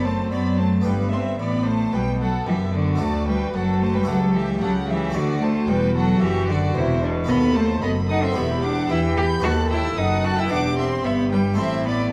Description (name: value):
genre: classical, baroque-style concerto movement with solo episodes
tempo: 112 BPM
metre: 4/4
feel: straight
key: E minor from 7.3 s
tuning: A4 = 444 Hz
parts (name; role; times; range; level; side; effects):
- rich cello; melody; 0.0-12.1 s; B2 to G4; -25 LUFS; equal; none
- warm chamber violin section; melody; 0.0-12.1 s; B4 to G6; -34 LUFS; equal; none
- rich chamber violin section; second line; 0.0-12.1 s; D4 to B5; -32 LUFS; equal; none
- dark chamber viola section; accompaniment; 0.0-12.1 s; B3 to A4; -32 LUFS; equal; none
- harpsichord; accompaniment; 0.0-12.1 s; C#2 to B4; -35 LUFS; equal; none
- dark studio double bass section; bass; 0.0-12.1 s; E1 to F#2; -29 LUFS; equal; none
- warm chamber cello section; bass; 0.0-12.1 s; C#2 to F#3; -29 LUFS; equal; none
room: wet recital hall reverb, RT60 1.6 s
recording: dark, warm production, vinyl crackle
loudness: -21 LUFS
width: mono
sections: 0.0-12.1 A section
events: none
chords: 0.0 D7/F#; 0.9 G; 3.0 D; 4.1 A7/C#; 5.2 D; 7.3 B7/D#; 8.4 Em; 9.4 B7/D#; 10.5 Em; 11.6 A5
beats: 0.32 | 0.86 1.40 1.93 2.47 | 3.00 3.54 4.08 4.62 | 5.15 5.68 6.22 6.75 | 7.29 7.82 8.36 8.90 | 9.43 9.97 10.51 11.05 | 11.59